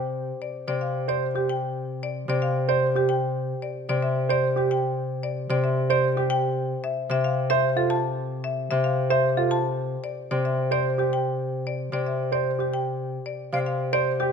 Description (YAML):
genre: classical, minimalist pattern music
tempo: 112 BPM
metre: 3/4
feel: straight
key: C major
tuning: A4 = 440 Hz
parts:
  - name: marimba with hard mallets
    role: melody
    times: 0.0-14.3 s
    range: G4 to A5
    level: -29 LUFS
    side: left 6 dB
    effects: none
  - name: Celtic harp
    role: accompaniment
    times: 0.0-14.3 s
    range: C3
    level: -25 LUFS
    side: left 1 dB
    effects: none
  - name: clear baby grand piano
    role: arpeggios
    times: 1.1-14.3 s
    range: F4 to C5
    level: -26 LUFS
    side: right 12 dB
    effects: none
  - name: concert flute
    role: arpeggios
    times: 13.5-13.6 s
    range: F5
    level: -32 LUFS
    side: right 2 dB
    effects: none
room: moderate recital hall reverb, RT60 1.6 s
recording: close, detailed microphones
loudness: -23 LUFS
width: side -6 dB against mid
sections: 0.0-14.3 A section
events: none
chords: 0.3 G5; 6.7 Fmaj7 (rootless); 9.9 Csus2; 13.1 N.C.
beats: | 0.27 0.81 1.34 | 1.88 2.42 2.95 | 3.49 4.02 4.56 | 5.09 5.63 6.17 | 6.70 7.24 7.77 | 8.31 8.84 9.38 | 9.91 10.45 10.99 | 11.52 12.06 12.59 | 13.13 13.66 14.20